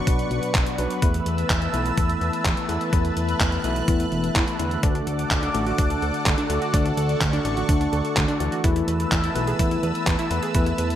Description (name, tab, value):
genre	italo disco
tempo	126 BPM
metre	4/4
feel	straight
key	unclear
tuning	A4 = 440 Hz
part	lush unison pad	sustained chords	0.0-11.0 s	A4 to F#6	-28 LUFS	equal	chorus, phaser
part	bell-like tine electric piano	stabs	0.0-11.0 s	B2 to D5	-27 LUFS	left 2 dB	medium stereo tremolo, tape echo
part	fat analog bass	bass	0.1-11.0 s	E1 to E2	-26 LUFS	equal	none
part	detuned 8-bit digital drum machine	drums	0.1-11.0 s	handclaps, hi-hat	-28 LUFS	equal	overdrive, gated reverb
part	electronic kick drum	drums	0.1-10.6 s	none	-23 LUFS	equal	overdrive
part	analog pluck	arpeggios	4.8-10.9 s	D3 to B4	-30 LUFS	right 2 dB	chorus, tape echo
room	light reverb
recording	none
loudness	-20 LUFS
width	side -11 dB against mid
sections	0.0-11.0 A section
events	none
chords	0.0 Bm; 1.0 Esus4; 4.8 D; 8.6 Esus4